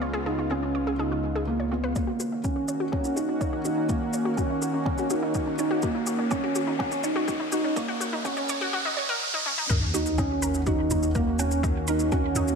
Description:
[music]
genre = piano and strings electronica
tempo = 124 BPM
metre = 4/4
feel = straight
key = Eb minor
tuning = A4 = 442 Hz
[part]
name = lush unison pad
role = sustained chords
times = 0.0-12.6 s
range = Db3 to Gb4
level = -33 LUFS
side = equal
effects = chorus
[part]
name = analog pluck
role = arpeggios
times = 0.0-12.4 s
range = Db4 to Db5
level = -32 LUFS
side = left 2 dB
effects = chorus, sidechain pumping, digital delay
[part]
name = dark detuned saw bass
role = bass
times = 0.0-1.9, 9.7-12.6 s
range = Db2 to Eb2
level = -30 LUFS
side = left 1 dB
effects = sidechain pumping
[part]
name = felt-muted upright piano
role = riff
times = 0.3-12.5 s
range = Bb3 to Eb4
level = -27 LUFS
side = right 2 dB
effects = digital delay
[part]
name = electronic kick drum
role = drums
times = 2.0-12.2 s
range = none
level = -29 LUFS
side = left 1 dB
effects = none
[part]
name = electronic shaker and toms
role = drums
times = 2.0-12.6 s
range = none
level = -35 LUFS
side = equal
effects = none
[part]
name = riser and sub drop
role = sound effects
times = 4.1-11.6 s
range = none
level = -33 LUFS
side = equal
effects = none
[sound]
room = moderate scoring stage reverb, RT60 1.7 s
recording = high-pass filter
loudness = -24 LUFS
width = side -5 dB against mid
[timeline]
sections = 0.0-2.0 A section; 2.0-9.7 B section; 9.7-12.6 C section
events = build-up 2.0-9.7; filter sweep on synth arpeggio sound 2.0-9.7; filter sweep 2.0-9.7; riser 4.1-9.7; drop 9.7-12.6; impact 9.7-11.6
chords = 0.0 Db7; 2.0 Ebm7

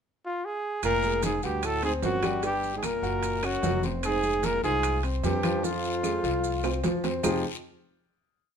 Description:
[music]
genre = Afro-Cuban jazz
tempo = 150 BPM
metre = 4/4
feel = straight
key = F minor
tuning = A4 = 440 Hz
[part]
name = breathy trumpet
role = melody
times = 0.3-6.8 s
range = F4 to Bb4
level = -29 LUFS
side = left 1 dB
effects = none
[part]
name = breathy baritone saxophone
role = second line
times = 0.8-6.8 s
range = F2 to Bb2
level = -32 LUFS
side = right 6 dB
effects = none
[part]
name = upright bass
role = bass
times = 0.8-7.4 s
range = F1 to F2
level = -33 LUFS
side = left 1 dB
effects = none
[part]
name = claves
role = percussion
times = 0.8-7.3 s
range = none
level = -40 LUFS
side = left 4 dB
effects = none
[part]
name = congas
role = percussion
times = 0.8-7.3 s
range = none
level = -35 LUFS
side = equal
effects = none
[part]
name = guiro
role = percussion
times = 0.8-7.3 s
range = none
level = -42 LUFS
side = left 7 dB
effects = none
[part]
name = maracas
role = percussion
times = 0.8-7.3 s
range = none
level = -41 LUFS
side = right 6 dB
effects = none
[part]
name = timbales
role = percussion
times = 0.8-7.3 s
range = none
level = -35 LUFS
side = right 9 dB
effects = none
[part]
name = warm grand piano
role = accompaniment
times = 1.0-7.4 s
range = F3 to Gb5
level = -31 LUFS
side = left 3 dB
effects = none
[sound]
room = light reverb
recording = minimal, uncompressed stereo recording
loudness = -25 LUFS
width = side -7 dB against mid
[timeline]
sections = 0.0-0.8 pickup bar; 0.8-7.2 A section; 7.2-8.6 final chord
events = drum fill 5.6-7.2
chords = 0.0 N.C.; 0.8 Fm; 1.6 D7; 2.4 Gmmaj7; 3.2 Gb5; 4.0 Fmadd9; 7.2 Fm9

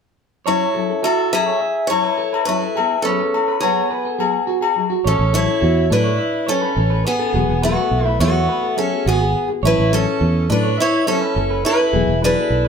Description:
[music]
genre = highlife guitar band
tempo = 105 BPM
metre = 4/4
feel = straight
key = A major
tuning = A4 = 439 Hz
[part]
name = picked acoustic archtop guitar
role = melody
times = 0.5-12.7 s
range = A3 to E5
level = -20 LUFS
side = equal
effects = none
[part]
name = nylon-string guitar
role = accompaniment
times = 0.5-12.6 s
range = F#3 to A4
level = -26 LUFS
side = left 8 dB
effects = none
[part]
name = electric guitar at the edge of break-up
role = arpeggios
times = 0.5-12.7 s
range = F#4 to E5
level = -23 LUFS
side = right 4 dB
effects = none
[part]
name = agogo bells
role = percussion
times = 0.5-4.8 s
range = none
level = -21 LUFS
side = left 10 dB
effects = none
[part]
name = raspy alto saxophone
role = second line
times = 5.1-12.7 s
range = B3 to E4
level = -25 LUFS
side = left 3 dB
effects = none
[part]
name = fingered electric bass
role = bass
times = 5.1-12.7 s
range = E1 to A2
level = -19 LUFS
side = right 1 dB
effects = none
[sound]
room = moderate large studio reverb, RT60 0.8 s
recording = band playing live in one room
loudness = -15 LUFS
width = side -6 dB against mid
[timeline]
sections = 0.5-5.1 A section; 5.1-12.7 B section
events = none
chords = 0.5 A6; 7.3 Eadd9; 9.6 A6; 11.9 Eadd9

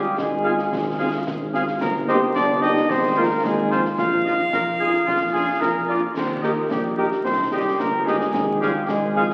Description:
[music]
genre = military-style march for wind band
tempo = 110 BPM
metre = 2/4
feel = straight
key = unclear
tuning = A4 = 435 Hz
[part]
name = warm cornet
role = melody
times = 0.0-9.3 s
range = G4 to F5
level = -26 LUFS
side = equal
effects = none
[part]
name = warm euphonium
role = second line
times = 0.0-9.3 s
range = G3 to F4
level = -28 LUFS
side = equal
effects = none
[part]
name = mellow tuba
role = bass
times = 0.0-9.3 s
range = G1 to F2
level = -30 LUFS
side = equal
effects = none
[part]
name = concert snare drum, concert bass drum and clash cymbals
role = drums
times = 0.2-9.3 s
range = none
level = -33 LUFS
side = equal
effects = none
[part]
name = clear woodwind section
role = second line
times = 0.4-9.3 s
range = F4 to F5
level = -29 LUFS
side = equal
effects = none
[part]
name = mellow French horn section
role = accompaniment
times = 0.5-9.3 s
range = Eb3 to G4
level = -30 LUFS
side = equal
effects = none
[sound]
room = wet concert hall reverb, RT60 2.0 s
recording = very old 78 rpm record, vinyl crackle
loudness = -21 LUFS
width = mono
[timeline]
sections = 0.0-9.3 A section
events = none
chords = 0.0 Fm/Ab; 1.8 Eb/G; 2.9 Fm/Ab; 4.0 Bbsus4; 5.1 Bb; 6.2 Eb; 7.2 Cm; 8.3 Fm/Ab

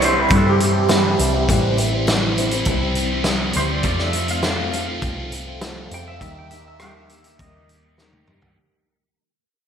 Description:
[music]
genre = folk rock and heartland rock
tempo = 102 BPM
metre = 4/4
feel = straight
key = unclear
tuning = A4 = 439 Hz
[part]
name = pedal steel guitar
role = second line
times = 0.0-7.7 s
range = G4 to G5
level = -23 LUFS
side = right 3 dB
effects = slapback echo
[part]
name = picked steel-string acoustic guitar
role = accompaniment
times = 0.0-8.6 s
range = C3 to C5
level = -25 LUFS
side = left 4 dB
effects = none
[part]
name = biting overdriven guitar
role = riff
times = 0.0-8.6 s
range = F2 to G4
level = -24 LUFS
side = right 1 dB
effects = phaser, slapback echo
[part]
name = hollow-body short-scale picked electric bass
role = bass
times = 0.0-8.6 s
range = A1 to G2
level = -24 LUFS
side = equal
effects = none
[part]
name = loose indie drum kit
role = drums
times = 0.0-8.6 s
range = hi-hat, kick drum, rim click, snare drum, toms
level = -22 LUFS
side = equal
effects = none
[sound]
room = wet concert hall reverb, RT60 2.3 s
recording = big arena sound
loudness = -16 LUFS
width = side -8 dB against mid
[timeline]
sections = 0.0-8.6 A section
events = fade-out 0.0-8.6; pedal steel guitar solo 0.0-8.6; drum fill 8.0-8.6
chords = 0.0 C; 3.8 F; 6.2 Eb

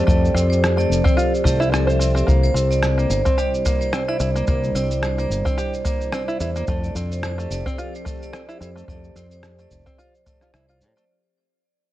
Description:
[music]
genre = folktronica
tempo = 109 BPM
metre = 4/4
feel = swing 56% on 16ths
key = unclear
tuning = A4 = 444 Hz
[part]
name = vibraphone with hard mallets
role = second line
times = 0.0-11.1 s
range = G4 to E5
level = -24 LUFS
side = right 2 dB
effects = tape echo
[part]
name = warbly tape-like pad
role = sustained chords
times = 0.0-11.1 s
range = C3 to A4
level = -29 LUFS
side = left 1 dB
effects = chorus, built-in reverb
[part]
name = open-back banjo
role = arpeggios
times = 0.0-11.0 s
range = A3 to C5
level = -28 LUFS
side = equal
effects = digital delay
[part]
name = fingered electric bass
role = bass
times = 0.1-10.9 s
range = F1 to A2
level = -21 LUFS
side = equal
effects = none
[part]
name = electronic cabasa and rim click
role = drums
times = 0.1-11.1 s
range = none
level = -29 LUFS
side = equal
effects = overdrive
[part]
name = kick drum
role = drums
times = 0.1-10.4 s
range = none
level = -21 LUFS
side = equal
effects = none
[sound]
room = small room reverb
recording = dark, warm production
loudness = -18 LUFS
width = side -15 dB against mid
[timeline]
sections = 0.0-11.1 A section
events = fade-out 2.3-11.1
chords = 0.0 F; 2.3 C7; 6.7 Fmaj7

